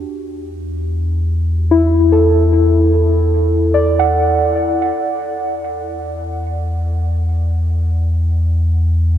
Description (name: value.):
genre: ambient.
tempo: free time.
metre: none.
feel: none.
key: unclear.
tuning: A4 = 440 Hz.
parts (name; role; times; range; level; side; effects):
muted felt-like synth keys; arpeggios; 0.0-5.6 s; E4 to F#5; -16 LUFS; equal; chorus, tape echo.
warm sub bass; bass; 0.0-9.2 s; E2; -16 LUFS; equal; none.
room: wet huge ambient reverb, RT60 7.3 s.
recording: dark, warm production.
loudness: -13 LUFS.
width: side -10 dB against mid.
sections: 0.0-5.0 A section; 5.0-9.2 B section.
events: none.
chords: 0.1 D5/E; 5.0 N.C..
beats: free time.